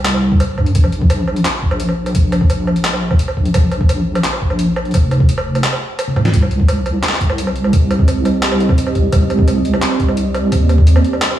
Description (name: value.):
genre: half-time drum and bass.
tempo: 172 BPM.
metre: 4/4.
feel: half-time.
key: C minor.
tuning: A4 = 440 Hz.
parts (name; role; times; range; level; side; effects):
deep soft wobble bass; bass; 0.0-11.0 s; F1 to G2; -16 LUFS; equal; chorus.
boom bap sampler-style drum kit; drums; 0.1-11.4 s; handclaps, hi-hat, snare drum, toms, woodblock; -19 LUFS; right 1 dB; none.
electronic kick drum; drums; 0.3-10.9 s; none; -14 LUFS; equal; none.
deep dark ambient pad; sustained chords; 7.2-11.4 s; C4 to Eb5; -20 LUFS; right 3 dB; chorus, built-in reverb, sidechain pumping.
room: light reverb, digital ambience.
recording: played on a big sound system in a bare room, large studio reverb, small room ambience.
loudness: -12 LUFS.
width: side -12 dB against mid.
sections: 0.0-6.3 A section; 6.3-11.4 A section.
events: drop 0.0-6.3, 6.3-11.4; break 5.6-6.3; drum fill 6.1.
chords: 0.0 C5; 0.8 Bb5; 6.3 Cmadd9.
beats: 0.06 0.40 | 0.75 1.10 1.45 1.80 | 2.15 2.50 2.85 3.19 | 3.54 3.89 4.24 4.59 | 4.94 5.29 5.64 5.99 | 6.33 6.68 7.03 7.38 | 7.73 8.08 8.43 8.78 | 9.12 9.47 9.82 10.17 | 10.52 10.87 11.22.